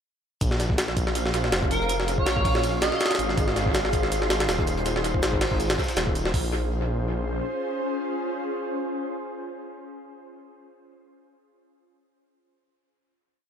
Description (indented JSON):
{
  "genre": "drum and bass, jungle",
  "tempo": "162 BPM",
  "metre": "4/4",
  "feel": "swing 55% on 16ths",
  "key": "Bb minor",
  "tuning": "A4 = 441 Hz",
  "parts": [
    { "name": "ethereal airy pad", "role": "sustained chords", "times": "1.0-10.1 s", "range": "Db4 to C5", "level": "-30 LUFS", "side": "left 1 dB", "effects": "ensemble chorus, built-in reverb" },
    { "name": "detuned saw bass", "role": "bass", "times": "0.4-7.4 s", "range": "Eb1 to Bb1", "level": "-28 LUFS", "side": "equal", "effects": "none" },
    { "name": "crunchy breakbeat drum kit", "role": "drums", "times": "0.4-6.3 s", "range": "hi-hat, shaker, snare drum", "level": "-38 LUFS", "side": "left 2 dB", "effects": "none" },
    { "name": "jungle sampler-style drum kit", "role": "drums", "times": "0.4-6.4 s", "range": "hi-hat, kick drum, snare drum", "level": "-25 LUFS", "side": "equal", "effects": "analog delay" },
    { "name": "wind-like tuned noise texture", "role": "texture", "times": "0.9-6.3 s", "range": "F5", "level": "-34 LUFS", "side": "right 3 dB", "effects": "built-in reverb" },
    { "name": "airy dreamy lead", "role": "melody", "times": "1.7-3.1 s", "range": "Bb4 to Eb5", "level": "-29 LUFS", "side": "right 1 dB", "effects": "chorus, cassette tape, analog delay" }
  ],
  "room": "light reverb",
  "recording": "echo-heavy mix",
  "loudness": "-23 LUFS",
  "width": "side -8 dB against mid",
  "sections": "0.4-6.3 drop; 6.3-9.3 final chord",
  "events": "drop 0.4-6.3",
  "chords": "0.4 Bbm9; 3.4 Fm7; 6.3 Bbm9"
}